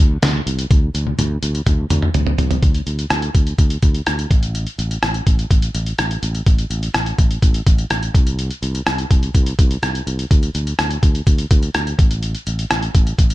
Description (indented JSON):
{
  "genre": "1980s-style pop",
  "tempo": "125 BPM",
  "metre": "4/4",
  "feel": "straight",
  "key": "unclear",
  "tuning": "A4 = 440 Hz",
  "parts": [
    { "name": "sustaining fretless electric bass", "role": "bass", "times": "0.0-13.3 s", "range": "A1 to D2", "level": "-21 LUFS", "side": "equal", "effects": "none" },
    { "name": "lo-fi sampler-style drum kit", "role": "drums", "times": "0.2-13.3 s", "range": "hi-hat, kick drum, rim click, snare drum, toms", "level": "-16 LUFS", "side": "equal", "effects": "none" }
  ],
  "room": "little or no reverb",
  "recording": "lossy compression artefacts",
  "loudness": "-15 LUFS",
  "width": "side -17 dB against mid",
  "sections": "0.0-2.6 A section; 2.6-13.3 B section",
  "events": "drum fill 0.7-2.6",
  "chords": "none"
}